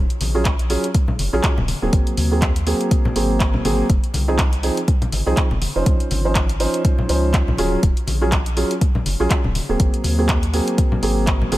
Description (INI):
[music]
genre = deep house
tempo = 122 BPM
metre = 4/4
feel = swing 57% on 16ths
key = Eb dorian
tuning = A4 = 440 Hz
[part]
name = round analog bass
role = bass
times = 0.0-11.6 s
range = Eb1 to Eb2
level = -22 LUFS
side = equal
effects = tube saturation, sidechain pumping
[part]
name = punchy analog drum machine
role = drums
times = 0.1-11.6 s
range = handclaps, hi-hat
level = -26 LUFS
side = equal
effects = none
[part]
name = congas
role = percussion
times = 0.2-11.6 s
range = none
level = -26 LUFS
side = left 2 dB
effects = none
[part]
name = felt-muted upright piano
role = stabs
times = 0.3-11.6 s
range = F3 to C5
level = -22 LUFS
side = right 1 dB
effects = vintage 12-bit sampler grit, sidechain pumping, dub echo
[part]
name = electronic kick drum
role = drums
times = 0.5-11.4 s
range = none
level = -18 LUFS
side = equal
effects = overdrive
[sound]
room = digital ambience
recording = none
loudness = -16 LUFS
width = side -16 dB against mid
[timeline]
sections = 0.0-11.6 A section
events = none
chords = 0.0 Ebm11; 1.9 Ab9; 3.9 Fm7; 5.9 Dbmaj9; 7.6 Ebm11; 9.8 Ab9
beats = 0.45 0.95 1.44 | 1.93 2.42 2.91 3.40 | 3.90 4.39 4.88 5.37 | 5.86 6.36 6.85 7.34 | 7.83 8.32 8.81 9.31 | 9.80 10.29 10.78 11.27